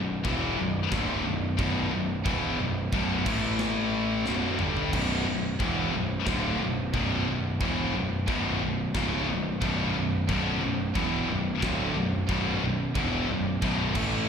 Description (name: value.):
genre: heavy metal.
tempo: 90 BPM.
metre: 4/4.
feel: straight.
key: B minor.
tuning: A4 = 440 Hz.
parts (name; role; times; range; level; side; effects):
heavy high-gain guitar; riff; 0.0-14.3 s; B1 to A3; -30 LUFS; left 11 dB; distortion, slapback echo.
raw garage guitar; riff; 0.0-14.3 s; B1 to A3; -34 LUFS; equal; overdrive, slapback echo.
scooped high-gain guitar; riff; 0.0-14.3 s; B1 to A3; -32 LUFS; right 11 dB; distortion, slapback echo.
fuzz picked electric bass; bass; 0.0-14.3 s; B0 to A1; -30 LUFS; equal; overdrive.
tight metal drum kit; drums; 0.2-14.1 s; china cymbal, crash cymbal, kick drum, snare drum, toms; -34 LUFS; right 1 dB; none.
room: little or no reverb.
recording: live gig heard through the venue's PA, recital hall reverb.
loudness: -25 LUFS.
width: side -7 dB against mid.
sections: 0.0-14.3 A section.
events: drum fill 4.3-4.9.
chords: 0.0 Bm; 3.3 A5; 4.3 Bm.